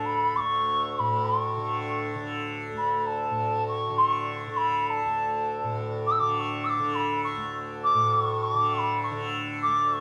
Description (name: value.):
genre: indian classical, Hindustani.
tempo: 100 BPM.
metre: 4/4.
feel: straight.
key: unclear.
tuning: A4 = 440 Hz.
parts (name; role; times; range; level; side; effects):
reedy bansuri; melody; 0.0-10.0 s; A5 to E6; -27 LUFS; equal; none.
tanpura; drone; 0.0-10.0 s; D2 to D3; -32 LUFS; equal; none.
room: moderate large studio reverb, RT60 1.1 s.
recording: band playing live in one room.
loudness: -27 LUFS.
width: mono.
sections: 0.0-10.0 A section.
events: none.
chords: none.